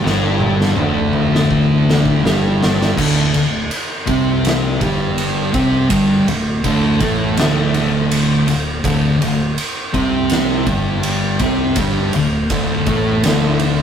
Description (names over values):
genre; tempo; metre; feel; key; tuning
stoner and doom metal; 82 BPM; 4/4; straight; unclear; A4 = 440 Hz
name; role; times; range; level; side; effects
thick fuzz guitar; riff; 0.0-13.8 s; D2 to C4; -19 LUFS; left 5 dB; distortion
thick fuzz guitar; riff; 0.0-13.8 s; D2 to C4; -18 LUFS; right 4 dB; distortion
growling fingered electric bass; bass; 0.0-13.8 s; D1 to C2; -22 LUFS; equal; overdrive
oversized low-tuned drum kit; drums; 0.1-13.8 s; crash cymbal, kick drum, ride cymbal, snare drum, toms; -20 LUFS; equal; none
room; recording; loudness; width
light reverb; rough rehearsal-room recording, tube saturation; -14 LUFS; side -8 dB against mid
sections
0.0-3.0 A section; 3.0-13.8 B section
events
drum fill 0.0-3.0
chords
0.0 D5